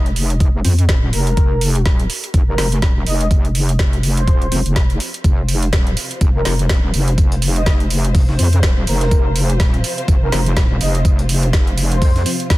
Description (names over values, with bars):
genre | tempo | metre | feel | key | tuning
bass house | 124 BPM | 4/4 | swing 58% on 16ths | unclear | A4 = 441 Hz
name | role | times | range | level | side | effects
wobble bass | bass | 0.0-12.2 s | Eb1 to F2 | -17 LUFS | equal | chorus, overdrive, sidechain pumping
garage drum kit | drums | 0.1-12.6 s | hi-hat, snare drum | -23 LUFS | right 1 dB | overdrive
electronic kick drum | drums | 0.4-12.6 s | none | -14 LUFS | equal | overdrive
percussive organ stab | stabs | 0.6-12.4 s | F3 to C5 | -28 LUFS | left 3 dB | chorus, sidechain pumping, digital delay
breathy flute-like synth lead | melody | 1.1-12.3 s | Bb4 to Eb5 | -26 LUFS | equal | ensemble chorus, vintage 12-bit sampler grit, digital delay
dark symphonic string section | sustained chords | 5.2-12.6 s | C3 to C5 | -28 LUFS | equal | sidechain pumping
breakbeat sampler-style drum kit | drums | 5.2-12.6 s | hi-hat, snare drum, tambourine | -31 LUFS | right 2 dB | none
room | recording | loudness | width
little or no reverb | dense, heavily limited modern master | -13 LUFS | side -18 dB against mid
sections
0.0-12.6 A section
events
filter sweep on synth stab 0.0-12.6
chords
0.0 F5